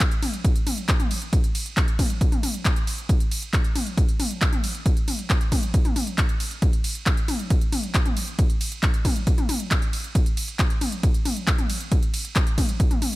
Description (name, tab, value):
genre	trance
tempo	136 BPM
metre	4/4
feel	straight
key	none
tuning	none
part	electronic kick drum	drums	0.0-12.9 s	none	-21 LUFS	equal	none
part	techno drum kit	drums	0.0-13.2 s	handclaps, hi-hat, ride cymbal, toms	-27 LUFS	left 1 dB	none
room	little or no reverb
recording	none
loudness	-20 LUFS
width	side -19 dB against mid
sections	0.0-13.2 A section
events	none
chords	none